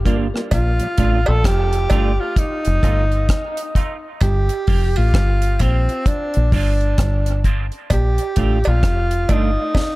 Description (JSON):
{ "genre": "dub reggae", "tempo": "65 BPM", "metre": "4/4", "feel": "swing 61% on 16ths", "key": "G minor", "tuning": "A4 = 440 Hz", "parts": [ { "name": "breathy tenor saxophone", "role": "melody", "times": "0.0-10.0 s", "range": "C4 to A4", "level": "-23 LUFS", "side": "right 1 dB", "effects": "dub echo" }, { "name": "mellow tonewheel organ", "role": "accompaniment", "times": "0.0-0.9 s", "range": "Bb2 to F4", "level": "-30 LUFS", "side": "left 1 dB", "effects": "slow rotary speaker, high-pass filter, dub echo" }, { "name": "deep dub fingered electric bass", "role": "bass", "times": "0.0-9.6 s", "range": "F1 to Bb1", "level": "-17 LUFS", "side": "equal", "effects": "none" }, { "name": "semi-hollow electric guitar", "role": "accompaniment", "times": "0.1-9.5 s", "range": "A3 to F4", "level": "-27 LUFS", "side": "right 4 dB", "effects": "analog chorus, high-pass filter, dub echo" }, { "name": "deep reggae drum kit", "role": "drums", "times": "0.1-10.0 s", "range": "hi-hat, kick drum, rim click, snare drum", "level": "-19 LUFS", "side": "equal", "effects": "none" }, { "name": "cowbell", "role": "percussion", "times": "0.5-10.0 s", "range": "none", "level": "-28 LUFS", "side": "equal", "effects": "high-pass filter on perc, dub echo" } ], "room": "light reverb, small room ambience", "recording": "echo-heavy mix", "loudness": "-15 LUFS", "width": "side -19 dB against mid", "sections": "0.0-10.0 A section", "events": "filter sweep 0.5-7.9; drum fill 9.8", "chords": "0.0 Gm7; 2.4 F7; 4.2 Gm7" }